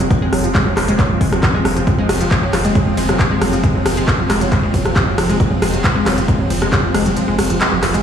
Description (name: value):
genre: driving peak-time techno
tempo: 136 BPM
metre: 4/4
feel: straight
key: F phrygian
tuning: A4 = 441 Hz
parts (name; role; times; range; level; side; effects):
- analog pluck; riff; 0.0-8.0 s; F3 to Ab3; -19 LUFS; equal; chorus, tube saturation, sidechain pumping, digital delay
- saturated sub bass; bass; 0.0-8.0 s; F1; -24 LUFS; equal; overdrive, sidechain pumping, low-pass filter
- swarming drone; drone; 0.0-8.0 s; F3 to C4; -21 LUFS; left 1 dB; built-in reverb, sidechain pumping
- techno drum kit; drums; 0.0-8.0 s; handclaps, hi-hat, ride cymbal, rim click; -19 LUFS; equal; none
- electronic kick drum; drums; 0.1-6.8 s; none; -17 LUFS; equal; none
room: light reverb, digital ambience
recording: played on a big sound system in a bare room, large studio reverb, small room reverb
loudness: -13 LUFS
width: side -8 dB against mid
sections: 0.0-8.0 A section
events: kick drops out 7.2-8.0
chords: 0.0 F5